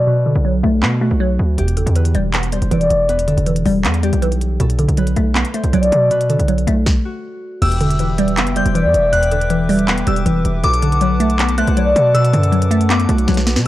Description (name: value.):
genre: hip hop, trap.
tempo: 159 BPM.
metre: 4/4.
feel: half-time.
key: E minor.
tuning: A4 = 440 Hz.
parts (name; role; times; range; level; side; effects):
Celtic harp; melody; 0.0-13.7 s; F#4 to D5; -21 LUFS; left 1 dB; low-pass filter, tape echo.
glassy wavetable pluck; accompaniment; 0.0-13.7 s; E2 to B3; -18 LUFS; equal; chorus, low-pass filter.
distorted 808-style bass; bass; 0.0-13.7 s; E1 to B2; -17 LUFS; equal; distortion.
trap drum kit; drums; 0.8-13.7 s; crash cymbal, handclaps, hi-hat, kick drum, snare drum; -22 LUFS; equal; none.
glassy synth bell; second line; 7.6-13.3 s; D6 to G6; -23 LUFS; left 2 dB; chorus, tape echo.
hollow soft pad; sustained chords; 7.6-13.6 s; B4 to D6; -28 LUFS; equal; chorus.
room: digital ambience.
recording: dry, gritty hardware recording, cassette tape.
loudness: -13 LUFS.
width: side -15 dB against mid.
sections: 0.0-7.6 A section; 7.6-13.7 B section.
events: break 0.0-1.6; filter sweep 0.0-1.6; stop 6.9-7.6; drum fill 13.3-13.7.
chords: 0.0 Bm7; 1.6 Em7; 4.6 Bm7; 7.6 Em7; 10.6 Bm7.